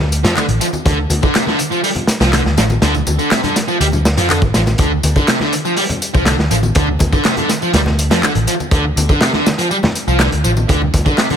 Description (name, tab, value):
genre	breakbeat, breaks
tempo	122 BPM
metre	4/4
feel	straight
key	D minor pentatonic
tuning	A4 = 440 Hz
part	picked electric bass	bass	0.0-11.0 s	A1 to F2	-16 LUFS	equal	none
part	crunchy breakbeat drum kit	drums	0.0-11.4 s	hi-hat, kick drum, snare drum	-17 LUFS	equal	none
part	electronic tambourine and handclaps	drums	0.1-11.3 s	none	-22 LUFS	left 1 dB	none
part	fuzz guitar	riff	0.2-11.4 s	C3 to G3	-17 LUFS	right 1 dB	distortion, vintage 12-bit sampler grit, digital delay
part	congas	percussion	0.4-11.4 s	none	-25 LUFS	left 3 dB	none
room	little or no reverb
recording	none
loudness	-12 LUFS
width	side -8 dB against mid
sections	0.0-11.4 A section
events	none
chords	0.0 Dm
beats	0.36 | 0.85 1.35 1.84 2.33 | 2.82 3.31 3.81 4.30 | 4.79 5.28 5.77 6.26 | 6.75 7.25 7.74 8.23 | 8.72 9.21 9.71 10.20 | 10.69 11.18